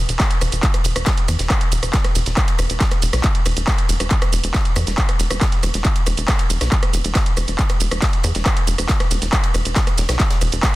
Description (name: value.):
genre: driving peak-time techno.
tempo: 138 BPM.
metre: 4/4.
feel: straight.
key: unclear.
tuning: A4 = 439 Hz.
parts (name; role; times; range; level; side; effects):
tight sequencer bass; bass; 0.0-10.6 s; E1 to E2; -21 LUFS; equal; sidechain pumping.
punchy analog drum machine; drums; 0.1-10.7 s; handclaps, hi-hat, ride cymbal, rim click, shaker; -21 LUFS; right 1 dB; none.
deep reggae drum kit; drums; 0.2-10.7 s; hi-hat, snare drum; -33 LUFS; left 3 dB; sidechain pumping on hats, high-pass filter on hats, high-pass filter on snare, high-pass filter on room.
electronic kick drum; drums; 0.2-10.7 s; none; -18 LUFS; equal; none.
room: little or no reverb.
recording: dense, heavily limited modern master.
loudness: -16 LUFS.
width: side -18 dB against mid.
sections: 0.0-10.8 A section.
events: none.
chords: none.